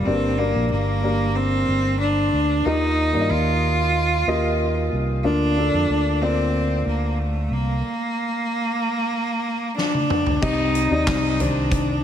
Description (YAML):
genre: piano-driven pop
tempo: 93 BPM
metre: 4/4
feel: straight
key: Bb major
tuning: A4 = 440 Hz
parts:
  - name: rich cello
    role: melody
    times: 0.0-12.0 s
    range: A3 to F4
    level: -22 LUFS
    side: right 1 dB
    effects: none
  - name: dark upright piano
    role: accompaniment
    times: 0.0-12.0 s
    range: G2 to Eb5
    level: -24 LUFS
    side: left 2 dB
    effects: slapback echo
  - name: fingered electric bass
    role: bass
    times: 0.0-12.0 s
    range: G1 to G2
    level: -23 LUFS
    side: equal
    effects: none
  - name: loose indie drum kit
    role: drums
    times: 9.8-11.9 s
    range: crash cymbal, handclaps, hi-hat, kick drum, snare drum, toms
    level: -24 LUFS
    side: equal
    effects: none
room: moderate lush hall reverb, RT60 2.7 s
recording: big arena sound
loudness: -19 LUFS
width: side -9 dB against mid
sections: 0.0-10.4 A section; 10.4-12.0 B section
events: stop 7.8-10.4; drum fill 9.8-10.4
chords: 0.1 Gm; 2.7 Ebadd9; 5.2 Bb; 10.4 Cm